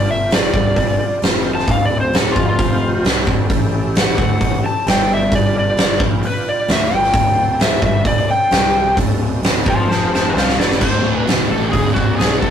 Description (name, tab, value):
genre	blues rock power trio and southern rock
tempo	132 BPM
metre	4/4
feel	straight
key	unclear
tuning	A4 = 440 Hz
part	overdriven slide guitar	melody	0.0-12.5 s	F4 to A5	-18 LUFS	equal	none
part	overdriven tonewheel organ	sustained chords	0.0-12.5 s	F3 to D5	-28 LUFS	right 1 dB	slow rotary speaker, chorus vibrato
part	fuzz picked electric bass	bass	0.0-12.5 s	D1 to D2	-21 LUFS	equal	overdrive
part	huge arena drum kit	drums	0.3-12.5 s	crash cymbal, hi-hat, kick drum, snare drum	-16 LUFS	equal	none
part	thick fuzz guitar	riff	10.8-12.5 s	D2 to B2	-20 LUFS	equal	distortion
room	moderate booth ambience, RT60 0.3 s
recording	rough rehearsal-room recording, tube saturation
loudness	-13 LUFS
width	side -8 dB against mid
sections	0.0-10.8 A section; 10.8-12.5 B section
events	electric slide guitar solo 0.0-10.8; drum fill 9.9-10.8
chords	0.0 G7; 1.2 F5; 1.7 D7; 2.6 F5; 3.0 D7; 3.5 A7; 4.9 G5; 5.3 G7; 7.1 D7; 8.5 C5; 9.0 D7; 9.9 F5; 10.4 D7